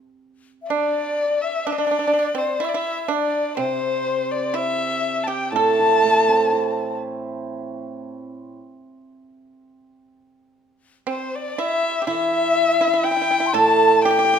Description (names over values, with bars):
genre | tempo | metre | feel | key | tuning
chinese traditional, Chinese chamber ensemble | 61 BPM | 4/4 | rubato | A yu mode | A4 = 443 Hz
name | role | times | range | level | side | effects
breathy bright xiao | second line | 0.6-14.4 s | C5 to C6 | -23 LUFS | left 5 dB | none
warm erhu | melody | 0.7-14.4 s | C5 to A5 | -22 LUFS | left 3 dB | none
pipa | second line | 0.7-14.4 s | C4 to A4 | -26 LUFS | right 7 dB | none
hammered dulcimer | accompaniment | 3.6-14.4 s | A2 to E4 | -22 LUFS | right 4 dB | none
room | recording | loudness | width
moderate recital hall reverb, RT60 1.4 s | none | -18 LUFS | side -7 dB against mid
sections
0.0-9.6 A section; 9.6-14.4 B section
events
none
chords
none